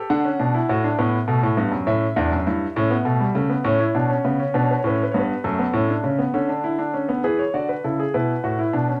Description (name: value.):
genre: classical, baroque-style 4-part fugue for grand piano.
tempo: 67 BPM (dotted quarters).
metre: 12/8.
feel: straight.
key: unclear.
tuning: A4 = 441 Hz.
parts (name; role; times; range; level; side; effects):
clear grand piano; solo; 0.0-9.0 s; E2 to F#5; -21 LUFS; equal; none.
room: moderate studio reverb, RT60 0.8 s.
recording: none.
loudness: -21 LUFS.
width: mono.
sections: 0.0-7.2 A section; 7.2-9.0 B section.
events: none.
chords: 0.1 D; 1.9 A; 5.4 D5; 7.2 E7.